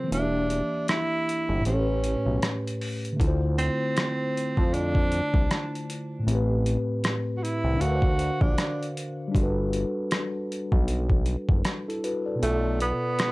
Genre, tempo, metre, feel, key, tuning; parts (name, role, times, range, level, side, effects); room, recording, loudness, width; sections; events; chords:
lo-fi hip hop; 78 BPM; 4/4; swing 56% on 16ths; A4 = 439 Hz
breathy tenor saxophone; melody; 0.0-13.3 s; A3 to F#4; -28 LUFS; right 2 dB
mellow tine electric piano; accompaniment; 0.0-13.3 s; A2 to E#5; -29 LUFS; left 1 dB; slow stereo tremolo
fat analog bass; bass; 0.1-12.9 s; E1 to F2; -27 LUFS; equal
boom bap sampler-style drum kit; drums; 0.1-13.3 s; hi-hat, kick drum, rim click; -26 LUFS; equal; overdrive
light reverb; cassette tape; -23 LUFS; side -22 dB against mid
0.0-13.3 A section
break 0.0-3.2
0.1 Em7b5; 1.7 A7; 3.2 Dm9; 6.3 Am9; 7.8 D7alt; 9.3 Gmaj7; 12.4 Bm7b5